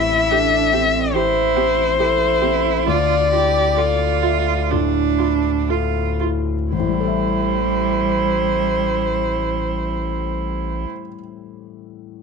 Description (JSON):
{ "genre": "neoclassical piano and strings", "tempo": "57-73 BPM", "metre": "4/4", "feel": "rubato", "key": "A minor", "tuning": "A4 = 440 Hz", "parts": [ { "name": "dark violin", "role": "melody", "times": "0.0-10.9 s", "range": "C5 to E5", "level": "-20 LUFS", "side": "left 5 dB", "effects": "none" }, { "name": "dark cello", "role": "second line", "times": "0.0-10.9 s", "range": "G3 to G4", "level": "-22 LUFS", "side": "right 14 dB", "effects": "none" }, { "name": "felt-muted upright piano", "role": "accompaniment", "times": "0.0-12.2 s", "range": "A1 to E5", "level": "-25 LUFS", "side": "left 13 dB", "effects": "none" }, { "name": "saturated sub bass", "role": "bass", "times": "0.0-10.9 s", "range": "A1 to D2", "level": "-24 LUFS", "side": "equal", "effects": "none" }, { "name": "dark viola", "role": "accompaniment", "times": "0.3-10.9 s", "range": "E4 to G4", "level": "-26 LUFS", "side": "right 16 dB", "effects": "none" } ], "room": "light reverb, studio reverb", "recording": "1960s-style stereo with parts hard left and right", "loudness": "-16 LUFS", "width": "side -5 dB against mid", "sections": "0.0-6.7 A section; 6.7-10.8 B section", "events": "slowing down 0.0-6.7", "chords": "0.0 Am7; 2.9 Dmadd9; 6.7 Am7", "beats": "0.32 1.15 2.00 | 2.88 3.79 4.72 5.70 | 6.73 7.75 8.78 9.81" }